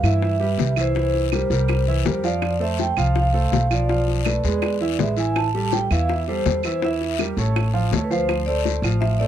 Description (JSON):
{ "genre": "Afro-Cuban jazz", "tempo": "164 BPM", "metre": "4/4", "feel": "straight", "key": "C major", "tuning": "A4 = 439 Hz", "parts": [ { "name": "vibraphone with medium mallets", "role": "melody", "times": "0.0-9.3 s", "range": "B4 to A5", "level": "-25 LUFS", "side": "equal", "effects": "slapback echo" }, { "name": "warm concert grand piano", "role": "accompaniment", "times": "0.0-9.3 s", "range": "E3 to F5", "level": "-25 LUFS", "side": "right 4 dB", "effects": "none" }, { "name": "upright bass", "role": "bass", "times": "0.0-9.3 s", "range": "A1 to G2", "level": "-22 LUFS", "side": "equal", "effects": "none" }, { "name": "claves", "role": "percussion", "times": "0.0-9.0 s", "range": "none", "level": "-31 LUFS", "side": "right 25 dB", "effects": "none" }, { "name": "guiro", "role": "percussion", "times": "0.0-9.3 s", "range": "none", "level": "-35 LUFS", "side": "left 21 dB", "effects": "none" }, { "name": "bongos", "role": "percussion", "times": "0.2-9.3 s", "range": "none", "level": "-27 LUFS", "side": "left 10 dB", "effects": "none" } ], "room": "light reverb", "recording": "dry, close 1970s-style studio recording", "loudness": "-19 LUFS", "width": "side -10 dB against mid", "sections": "0.0-9.3 A section", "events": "none", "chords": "0.0 Cmaj7; 1.0 C7; 2.4 F; 3.9 Bm7b5; 4.6 E7; 5.4 Am7; 6.8 Edim; 7.6 Aaug; 8.3 Dm7" }